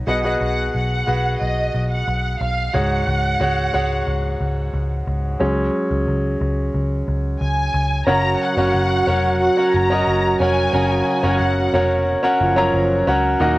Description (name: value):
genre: piano-driven pop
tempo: 90 BPM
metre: 4/4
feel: straight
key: F# major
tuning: A4 = 440 Hz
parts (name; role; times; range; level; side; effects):
- bright grand piano; accompaniment; 0.0-13.6 s; G#2 to A#5; -20 LUFS; equal; cassette tape
- warm studio violin section; melody; 0.1-12.1 s; D#5 to A#5; -23 LUFS; equal; cassette tape
- vintage muted picked electric bass; bass; 0.1-13.6 s; E#1 to D#2; -22 LUFS; equal; none
- mellow French horn section; second line; 8.1-13.6 s; E#3 to F#4; -21 LUFS; right 2 dB; cassette tape
room: light reverb, small room ambience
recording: home recording on cassette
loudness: -17 LUFS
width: side -18 dB against mid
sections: 0.0-5.4 A section; 5.4-8.1 B section; 8.1-13.6 C section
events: grand piano solo 5.4-8.1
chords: 0.1 G#m7/B; 2.7 C#sus4; 8.1 F#